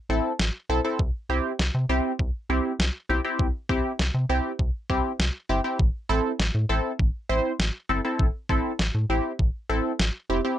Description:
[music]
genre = synth-pop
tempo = 100 BPM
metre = 4/4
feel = straight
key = A minor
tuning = A4 = 438 Hz
[part]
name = funky polysynth comp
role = accompaniment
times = 0.1-10.6 s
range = C4 to C5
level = -25 LUFS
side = equal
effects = chorus, phaser
[part]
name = rubbery square bass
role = bass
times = 0.1-10.4 s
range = F1 to C3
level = -26 LUFS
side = equal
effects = none
[part]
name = clean 12-bit digital drum machine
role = drums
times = 0.4-10.1 s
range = kick drum, snare drum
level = -25 LUFS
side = equal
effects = none
[sound]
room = little or no reverb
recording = none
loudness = -23 LUFS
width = side -12 dB against mid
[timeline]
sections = 0.0-10.6 A section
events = none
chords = 0.0 Am; 1.0 C; 5.8 Am7

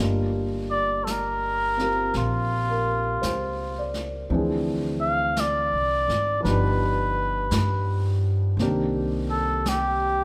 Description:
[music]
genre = jazz ballad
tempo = 56 BPM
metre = 4/4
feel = swing 66% on 8ths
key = G minor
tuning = A4 = 437 Hz
[part]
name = warm grand piano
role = accompaniment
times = 0.0-10.2 s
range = Eb3 to Eb5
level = -31 LUFS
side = equal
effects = none
[part]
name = upright bass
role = bass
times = 0.0-10.2 s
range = G1 to G2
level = -30 LUFS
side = equal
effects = none
[part]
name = trumpet with cup mute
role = melody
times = 0.7-10.2 s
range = F4 to F5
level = -27 LUFS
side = equal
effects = none
[part]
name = jazz brush drum kit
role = drums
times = 1.1-10.2 s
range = brushed snare drum, hi-hat, snare drum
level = -37 LUFS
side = equal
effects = none
[sound]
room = moderate recital hall reverb, RT60 1.8 s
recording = recorded in a church or concert hall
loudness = -24 LUFS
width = mono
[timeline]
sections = 0.0-10.2 A section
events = none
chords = 0.0 Gm7; 4.3 Dm7b5; 6.4 G7b13; 8.6 Cm9

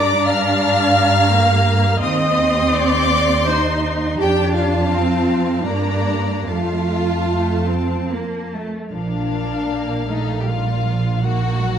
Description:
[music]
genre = classical, slow romantic movement for string orchestra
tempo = 71-87 BPM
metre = 3/4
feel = rubato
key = Bb major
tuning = A4 = 440 Hz
[part]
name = dark chamber violin section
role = melody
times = 0.0-11.8 s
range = F5 to C6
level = -28 LUFS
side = left 8 dB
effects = none
[part]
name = rich chamber violin section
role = second line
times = 0.0-11.8 s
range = D4 to F6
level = -25 LUFS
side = left 4 dB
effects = none
[part]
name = warm chamber viola section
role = accompaniment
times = 0.0-11.8 s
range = D4 to F5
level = -21 LUFS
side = equal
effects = none
[part]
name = warm chamber cello section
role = bass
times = 0.0-11.8 s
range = F3 to Eb4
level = -22 LUFS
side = right 2 dB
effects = none
[part]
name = warm chamber double bass section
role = bass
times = 0.0-11.8 s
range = Bb1 to G2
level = -20 LUFS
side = right 2 dB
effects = none
[sound]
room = moderate scoring stage reverb, RT60 1.7 s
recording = dark, warm production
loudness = -16 LUFS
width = side -8 dB against mid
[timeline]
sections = 0.0-8.9 A section; 8.9-11.8 B section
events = none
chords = 0.0 Gm; 2.0 Cm/Eb; 4.2 F; 5.7 Gm; 6.5 F; 8.9 Bb; 11.2 Ebm/Bb

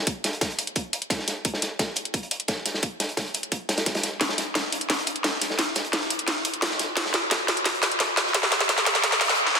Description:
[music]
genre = drum and bass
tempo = 174 BPM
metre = 4/4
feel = straight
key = none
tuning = none
[part]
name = crunchy breakbeat drum kit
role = drums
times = 0.1-9.4 s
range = hi-hat, snare drum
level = -29 LUFS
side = equal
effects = high-pass filter on hats, high-pass filter on snare, high-pass filter on room
[part]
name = drum and bass drum kit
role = drums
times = 0.1-9.6 s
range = hi-hat, snare drum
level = -23 LUFS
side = equal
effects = high-pass filter on hats, high-pass filter on snare, high-pass filter on room
[part]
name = electronic kick drum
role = drums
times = 0.1-9.1 s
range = none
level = -31 LUFS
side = equal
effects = high-pass filter on kick, high-pass filter on room
[sound]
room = wet lush hall reverb, RT60 1.9 s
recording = dense, heavily limited modern master, high-pass filter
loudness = -22 LUFS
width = side -5 dB against mid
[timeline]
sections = 0.0-9.6 A section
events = build-up 0.0-9.6; drum fill 4.2-9.4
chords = none

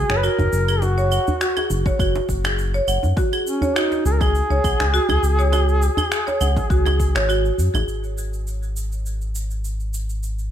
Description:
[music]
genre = organic downtempo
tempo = 102 BPM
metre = 4/4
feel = swing 53% on 16ths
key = unclear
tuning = A4 = 440 Hz
[part]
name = mellow duduk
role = melody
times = 0.0-7.3 s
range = C#4 to B4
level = -24 LUFS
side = equal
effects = ping-pong delay
[part]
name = marimba with hard mallets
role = arpeggios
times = 0.0-7.9 s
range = F#4 to F#5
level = -23 LUFS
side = right 1 dB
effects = ping-pong delay
[part]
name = smooth gliding synth bass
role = bass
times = 0.0-10.5 s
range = F#1 to F#2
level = -21 LUFS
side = equal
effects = none
[part]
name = electronic finger snaps, shaker and claves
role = drums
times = 0.1-10.5 s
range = none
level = -27 LUFS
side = right 1 dB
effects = overdrive
[part]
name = djembe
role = percussion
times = 0.1-7.9 s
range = none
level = -28 LUFS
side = right 2 dB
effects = none
[part]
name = electronic kick drum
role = drums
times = 1.9-7.1 s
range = none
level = -22 LUFS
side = equal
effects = overdrive
[sound]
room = light reverb, studio reverb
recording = none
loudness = -18 LUFS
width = side -10 dB against mid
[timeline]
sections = 0.0-7.9 A section; 7.9-10.5 B section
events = none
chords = 0.0 F#sus2; 3.2 C#sus4; 7.9 N.C.

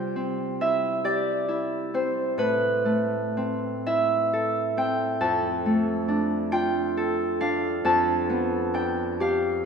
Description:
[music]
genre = classical, solo harp piece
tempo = 45 BPM (dotted quarters)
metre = 6/8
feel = rubato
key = C major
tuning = A4 = 440 Hz
[part]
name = Celtic harp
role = solo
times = 0.0-9.7 s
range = F2 to A5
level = -23 LUFS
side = equal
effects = none
[sound]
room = wet church reverb, RT60 2.9 s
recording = minimal, uncompressed stereo recording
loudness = -23 LUFS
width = side -6 dB against mid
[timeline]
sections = 0.0-9.7 A section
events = none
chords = 0.0 C; 2.4 Am; 5.2 Dm/F; 7.9 G7/F

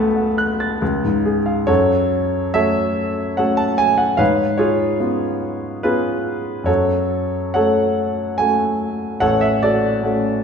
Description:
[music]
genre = classical, romantic character piece for solo piano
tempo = 72 BPM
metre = 3/4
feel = uneven beats, rubato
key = F# minor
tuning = A4 = 437 Hz
[part]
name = clear grand piano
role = solo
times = 0.0-10.4 s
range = A1 to A6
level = -16 LUFS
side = equal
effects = none
[sound]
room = wet recital hall reverb, RT60 1.7 s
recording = recorded in a church or concert hall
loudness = -16 LUFS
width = side -6 dB against mid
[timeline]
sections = 0.0-1.7 A section; 1.7-10.4 B section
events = none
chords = 0.0 F#m/C#; 0.8 C#; 1.7 F#m; 4.2 C#7/G#; 6.7 F#m; 9.2 F#m/A

